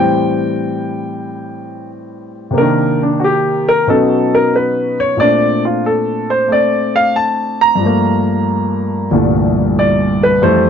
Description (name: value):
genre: solo jazz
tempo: 92 BPM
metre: 4/4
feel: swing 69% on 8ths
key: unclear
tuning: A4 = 441 Hz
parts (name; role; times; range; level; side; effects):
- warm grand piano; solo; 0.0-10.7 s; C2 to Bb5; -12 LUFS; equal; none
room: light reverb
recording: dark, warm production, nothing above 7.8 kHz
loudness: -12 LUFS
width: side -7 dB against mid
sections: 0.0-10.7 A section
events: grand piano solo 0.0-10.7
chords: 0.0 Am7; 2.6 Cm9; 3.9 Badd9; 5.2 Bbmaj9; 7.8 Gm9; 9.1 C13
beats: 0.58 1.24 1.89 | 2.55 3.21 3.86 4.52 | 5.18 5.83 6.49 7.14 | 7.80 8.45 9.11 9.76 | 10.42